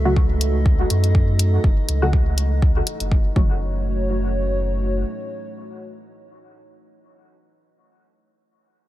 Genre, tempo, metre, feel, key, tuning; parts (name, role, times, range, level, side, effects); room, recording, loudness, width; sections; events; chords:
dub techno; 122 BPM; 4/4; swing 55% on 16ths; F# dorian; A4 = 440 Hz
dark analog pad; sustained chords; 0.0-6.6 s; A3 to C#5; -28 LUFS; right 2 dB; chorus, sidechain pumping
pure sine sub bass; bass; 0.0-5.0 s; F#1 to F#2; -21 LUFS; equal; sidechain pumping
metallic inharmonic drone; texture; 0.0-3.6 s; E3 to D#4; -35 LUFS; left 2 dB; chorus, built-in reverb, sidechain pumping
filtered dub chord stab; stabs; 0.1-6.6 s; C#3 to F#4; -27 LUFS; equal; chorus, phaser, sidechain pumping, dub echo
electronic kick drum; drums; 0.2-3.5 s; -18 LUFS; equal
electronic hi-hat; drums; 0.4-3.1 s; -25 LUFS; left 2 dB
little or no reverb; -17 LUFS; side -15 dB against mid
0.0-3.6 A section; 3.6-7.5 B section
filter sweep on synth stab 0.0-3.6
0.0 F#m